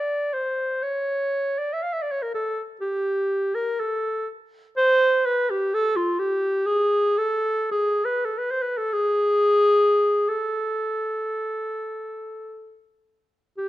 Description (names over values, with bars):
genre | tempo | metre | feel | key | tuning
classical, free, expressive piece for unaccompanied clarinet | 33-65 BPM | 4/4 | rubato | unclear | A4 = 439 Hz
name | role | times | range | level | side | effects
warm clarinet | solo | 0.0-13.7 s | F4 to F5 | -21 LUFS | equal | none
room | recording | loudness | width
moderate recital hall reverb, RT60 1.4 s | close, detailed microphones | -21 LUFS | side -15 dB against mid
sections
0.0-13.7 A section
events
none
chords
none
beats
| 0.82 1.81 2.79 3.78 | 4.75 5.70 6.65 7.71 | 8.92 10.27 11.56 12.82